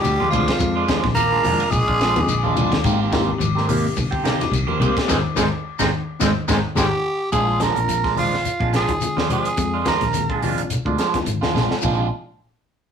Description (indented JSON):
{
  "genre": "afrobeat",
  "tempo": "107 BPM",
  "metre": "4/4",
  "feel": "swing 55% on 16ths",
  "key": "Bb mixolydian",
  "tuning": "A4 = 439 Hz",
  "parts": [
    { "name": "raspy tenor saxophone", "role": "melody", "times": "0.0-2.6, 6.8-10.7 s", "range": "F4 to Bb4", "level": "-22 LUFS", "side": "right 2 dB", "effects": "none" },
    { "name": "growling trombone", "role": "second line", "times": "0.0-6.8 s", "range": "F3 to Bb3", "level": "-29 LUFS", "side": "right 2 dB", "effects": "none" },
    { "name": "reed electric piano", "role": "accompaniment", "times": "0.0-12.1 s", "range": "Ab3 to Ab4", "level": "-30 LUFS", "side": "left 5 dB", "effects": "fast tremolo" },
    { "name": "electric guitar at the edge of break-up", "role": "arpeggios", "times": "0.0-12.0 s", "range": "Bb2 to Ab3", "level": "-29 LUFS", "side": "left 7 dB", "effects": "vibrato effect" },
    { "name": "fingered electric bass", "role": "bass", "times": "0.0-12.1 s", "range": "G1 to F2", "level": "-25 LUFS", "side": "equal", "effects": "none" },
    { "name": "tight funk drum kit", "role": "drums", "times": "0.0-12.0 s", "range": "crash cymbal, hi-hat, kick drum, ride cymbal, snare drum", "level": "-25 LUFS", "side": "left 2 dB", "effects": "none" },
    { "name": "shekere", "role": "percussion", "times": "0.0-12.0 s", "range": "none", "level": "-29 LUFS", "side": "left 4 dB", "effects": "none" },
    { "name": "electric guitar at the edge of break-up", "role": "stabs", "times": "0.2-12.1 s", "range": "Eb3 to G4", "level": "-24 LUFS", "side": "right 5 dB", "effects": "phaser" },
    { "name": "congas", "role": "percussion", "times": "0.2-12.0 s", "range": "none", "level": "-26 LUFS", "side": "left 2 dB", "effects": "none" }
  ],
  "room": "wet studio reverb, RT60 0.6 s",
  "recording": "rough rehearsal-room recording",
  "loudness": "-17 LUFS",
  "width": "side -7 dB against mid",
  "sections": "0.0-7.3 A section; 7.3-11.8 B section; 11.8-12.9 C section",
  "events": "band accent 5.1-7.3; reed electric piano fill 5.6-7.3; drum fill 11.5",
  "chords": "0.0 Bb7; 2.8 Abmaj9; 7.3 Bb7"
}